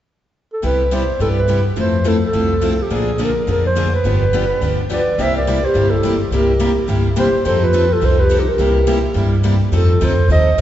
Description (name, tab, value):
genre	acoustic string swing (jazz manouche)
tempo	211 BPM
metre	4/4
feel	swing 57% on 8ths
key	C major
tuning	A4 = 443 Hz
part	breathy clarinet	melody	0.5-10.6 s	G4 to E5	-19 LUFS	right 1 dB	none
part	picked steel-string acoustic guitar	accompaniment	0.6-10.6 s	C3 to A4	-22 LUFS	left 4 dB	none
part	picked steel-string acoustic guitar	accompaniment	0.6-10.6 s	C3 to A4	-26 LUFS	right 3 dB	none
part	upright bass	bass	0.6-10.6 s	G1 to G2	-17 LUFS	equal	none
part	mellow hollow polished pan flute	second line	4.9-10.6 s	Eb4 to C5	-20 LUFS	right 1 dB	none
room	wet church reverb, RT60 3.3 s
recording	recorded in a church or concert hall, nothing above 7.8 kHz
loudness	-14 LUFS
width	side -12 dB against mid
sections	0.6-5.2 A section; 5.2-10.6 B section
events	none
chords	0.0 N.C.; 0.6 Cmaj7; 1.8 Fmaj7; 2.9 Bb7; 4.0 G7; 5.2 C7; 7.5 F7; 8.6 C7; 9.7 F7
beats	0.06 0.35 | 0.63 0.92 1.20 1.49 | 1.77 2.06 2.34 2.62 | 2.91 3.19 3.48 3.76 | 4.05 4.33 4.62 4.90 | 5.18 5.47 5.75 6.04 | 6.32 6.61 6.89 7.17 | 7.46 7.74 8.03 8.31 | 8.60 8.88 9.16 9.45 | 9.73 10.02 10.30 10.59